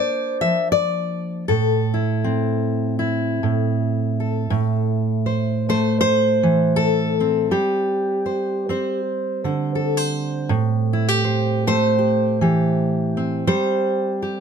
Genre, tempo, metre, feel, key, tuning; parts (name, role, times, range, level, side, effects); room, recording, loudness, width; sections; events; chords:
folk, solo fingerstyle acoustic guitar; 80 BPM; 4/4; swing 58% on 8ths; A phrygian, A minor from 4.5 s; A4 = 440 Hz
fingerpicked steel-string acoustic guitar; solo; 0.0-14.4 s; A2 to E5; -18 LUFS; right 1 dB
little or no reverb; close, detailed microphones; -18 LUFS; side -6 dB against mid
0.0-4.5 A section; 4.5-14.4 B section
0.0 Bb; 1.5 Am; 7.5 Gsus4; 10.5 Am7; 13.5 Gsus4